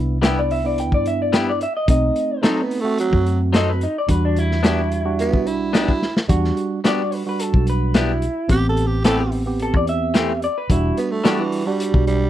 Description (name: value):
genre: straight-eighth soul blues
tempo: 109 BPM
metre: 4/4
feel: straight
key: E minor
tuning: A4 = 440 Hz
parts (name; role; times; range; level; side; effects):
- tine electric piano; accompaniment; 0.0-12.3 s; G3 to G4; -23 LUFS; right 4 dB; phaser
- vintage muted fingered electric bass; bass; 0.0-12.3 s; E1 to G2; -21 LUFS; equal; none
- electric guitar through a small old amp; stabs; 0.2-11.4 s; E3 to A4; -24 LUFS; left 5 dB; none
- crunchy breakbeat drum kit; drums; 0.2-12.2 s; hi-hat, kick drum, snare drum; -19 LUFS; equal; none
- electric guitar through a small old amp; melody; 0.3-11.0 s; D4 to G5; -23 LUFS; left 1 dB; none
- growling tenor saxophone; second line; 2.4-12.3 s; E3 to A4; -23 LUFS; right 3 dB; none
room: studio ambience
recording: dry, close 1970s-style studio recording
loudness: -17 LUFS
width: side -12 dB against mid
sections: 0.0-6.3 A section; 6.3-12.3 A section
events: drum fill 6.0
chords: 0.0 Cmaj7; 1.9 B7b9 (rootless); 4.1 Em7; 8.5 Am7; 10.7 Em7